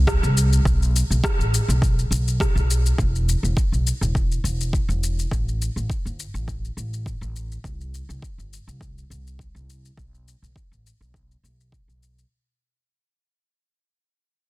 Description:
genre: organic downtempo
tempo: 103 BPM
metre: 4/4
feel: swing 53% on 16ths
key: unclear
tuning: A4 = 441 Hz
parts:
  - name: upright bass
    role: bass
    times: 0.0-12.2 s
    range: E1 to C2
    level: -22 LUFS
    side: equal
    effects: sidechain pumping
  - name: electronic kick drum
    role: drums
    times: 0.1-11.8 s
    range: none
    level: -24 LUFS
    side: equal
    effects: overdrive
  - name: electronic rim click and shaker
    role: drums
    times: 0.1-12.3 s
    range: none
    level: -29 LUFS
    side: left 2 dB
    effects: overdrive
room: little or no reverb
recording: dense, heavily limited modern master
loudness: -20 LUFS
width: side -20 dB against mid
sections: 0.0-12.3 A section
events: fade-out 0.0-12.3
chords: none

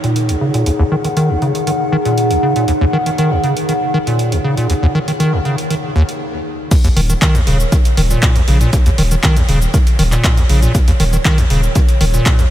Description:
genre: acid house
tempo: 119 BPM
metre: 4/4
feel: straight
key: Eb minor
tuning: A4 = 440 Hz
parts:
  - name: acid bass, square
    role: riff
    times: 0.0-12.5 s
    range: Db2 to Eb3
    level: -16 LUFS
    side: equal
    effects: cassette tape, tape echo
  - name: punchy analog drum machine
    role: drums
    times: 0.0-12.5 s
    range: crash cymbal, handclaps, hi-hat, shaker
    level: -22 LUFS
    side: equal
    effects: overdrive
  - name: warbly tape-like pad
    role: texture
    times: 0.0-12.5 s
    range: Eb4 to Gb5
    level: -20 LUFS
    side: equal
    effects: chorus, built-in reverb, sidechain pumping
  - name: electronic kick drum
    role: drums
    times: 6.7-12.4 s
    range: none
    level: -13 LUFS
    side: equal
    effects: overdrive
  - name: saturated sub bass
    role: bass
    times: 7.0-12.2 s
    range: Eb1 to Bb1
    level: -14 LUFS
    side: equal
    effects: sidechain pumping
room: moderate huge ambient reverb, RT60 7.8 s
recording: dreamy mix soaked in reverb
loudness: -12 LUFS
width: side -12 dB against mid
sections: 0.0-6.7 A section; 6.7-12.5 B section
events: stop 6.2-6.7; drop 6.7-12.5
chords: 0.0 Ebm; 6.7 Eb5

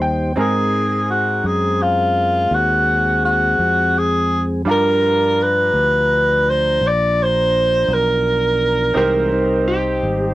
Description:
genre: slow blues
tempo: 56 BPM (dotted quarters)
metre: 12/8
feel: straight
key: unclear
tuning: A4 = 440 Hz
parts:
  - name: bright upright piano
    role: accompaniment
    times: 0.0-10.3 s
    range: G3 to A#5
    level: -26 LUFS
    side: right 2 dB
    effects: none
  - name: mellow tonewheel organ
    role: sustained chords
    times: 0.0-10.3 s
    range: E3 to A#5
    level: -24 LUFS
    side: left 1 dB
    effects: slow rotary speaker
  - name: fingered electric bass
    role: bass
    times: 0.0-10.3 s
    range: Ab1 to Ab2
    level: -22 LUFS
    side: equal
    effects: none
  - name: warm tenor saxophone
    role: melody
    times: 0.4-9.3 s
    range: F4 to D5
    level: -16 LUFS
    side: equal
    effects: cassette tape
  - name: electric slide guitar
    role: second line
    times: 9.0-10.3 s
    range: G4 to Bb4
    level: -19 LUFS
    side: right 1 dB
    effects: none
room: little or no reverb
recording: home recording on cassette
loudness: -14 LUFS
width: side -16 dB against mid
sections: 0.0-10.3 A section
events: upright piano fill 0.0-0.4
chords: 0.4 Ab7; 4.7 G7#9; 9.0 Cm

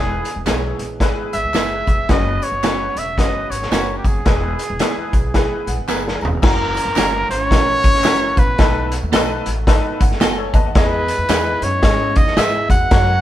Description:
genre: uptempo 1960s-style soul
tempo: 111 BPM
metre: 4/4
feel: swing 60% on 8ths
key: unclear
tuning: A4 = 441 Hz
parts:
  - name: clear trumpet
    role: melody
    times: 0.0-13.2 s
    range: G4 to F#5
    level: -20 LUFS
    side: equal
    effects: none
  - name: bright upright piano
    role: accompaniment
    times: 0.0-13.2 s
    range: C#4 to A#5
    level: -24 LUFS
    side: left 2 dB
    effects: none
  - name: tonewheel organ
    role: sustained chords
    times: 0.0-13.2 s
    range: C#3 to G#4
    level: -33 LUFS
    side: right 2 dB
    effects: none
  - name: upright bass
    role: bass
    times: 0.0-13.2 s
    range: E1 to G#2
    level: -25 LUFS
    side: equal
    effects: none
  - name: tambourine and handclaps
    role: percussion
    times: 0.2-13.1 s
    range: none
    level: -34 LUFS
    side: left 2 dB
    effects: none
  - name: vintage drum kit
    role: drums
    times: 0.3-13.1 s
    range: crash cymbal, hi-hat, kick drum, snare drum, toms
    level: -17 LUFS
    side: equal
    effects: none
  - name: clean electric guitar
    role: stabs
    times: 0.5-12.5 s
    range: B3 to D#5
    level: -25 LUFS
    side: right 6 dB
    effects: spring reverb
  - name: vibraphone with soft mallets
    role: second line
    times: 6.5-13.2 s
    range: A#3 to F#4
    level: -29 LUFS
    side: right 5 dB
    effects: none
room: light reverb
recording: band playing live in one room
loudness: -15 LUFS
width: side -13 dB against mid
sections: 0.0-6.4 A section; 6.4-13.2 B section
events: upright piano fill 5.3-6.4, 9.7-10.8; drum fill 5.9-6.4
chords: 0.0 E; 6.4 F#7; 8.6 B7; 10.8 Emaj7

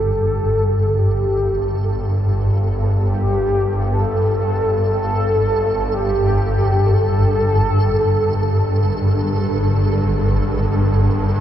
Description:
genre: dark ambient drone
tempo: free time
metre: none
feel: none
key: unclear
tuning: A4 = 440 Hz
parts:
  - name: mellow horn-like synth lead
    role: melody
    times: 0.0-9.0 s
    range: G4 to A4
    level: -21 LUFS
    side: equal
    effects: analog chorus, cassette tape, diffuse ambient delay
  - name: swarming drone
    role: drone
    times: 0.0-11.4 s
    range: G1 to G2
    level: -17 LUFS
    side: equal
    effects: built-in reverb
  - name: flickering grainy texture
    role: texture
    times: 0.0-11.4 s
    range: A4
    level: -29 LUFS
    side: right 4 dB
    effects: built-in reverb
room: moderate huge ambient reverb, RT60 8.2 s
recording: none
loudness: -15 LUFS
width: side -10 dB against mid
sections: 0.0-11.4 A section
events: fade-in on synth texture 0.0-11.4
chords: 0.0 Gsus2

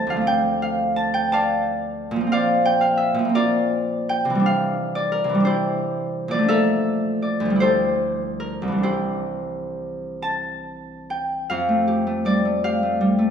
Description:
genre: classical, solo harp piece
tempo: 42-61 BPM (dotted quarters)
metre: 6/8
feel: rubato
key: C mixolydian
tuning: A4 = 440 Hz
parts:
  - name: Celtic harp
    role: solo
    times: 0.0-13.3 s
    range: C2 to A5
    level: -19 LUFS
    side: equal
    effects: none
room: moderate scoring stage reverb, RT60 1.8 s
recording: recorded in a church or concert hall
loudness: -19 LUFS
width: side -7 dB against mid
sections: 0.0-11.5 A section; 11.5-13.3 B section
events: none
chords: 0.3 Dm7; 2.3 Bbadd9; 4.5 Cadd9; 6.5 Bbmaj7; 7.6 Dm11; 8.8 Cadd9; 11.5 F69

